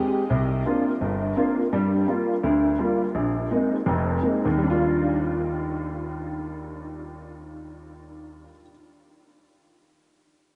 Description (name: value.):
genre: jazz.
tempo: 169 BPM.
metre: 4/4.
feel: swing 65% on 8ths.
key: Eb major.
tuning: A4 = 439 Hz.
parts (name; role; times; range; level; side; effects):
warm baby grand piano; accompaniment; 0.0-8.7 s; F1 to G4; -25 LUFS; equal; ensemble chorus.
room: wet huge ambient reverb, RT60 7.1 s.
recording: dreamy mix soaked in reverb, nothing above 10.8 kHz.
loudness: -24 LUFS.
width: mono.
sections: 0.0-4.6 A section; 4.6-7.4 B section.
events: none.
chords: 0.3 C9sus4; 1.7 Gm7; 3.1 Bb9sus4; 4.6 Ebmaj9.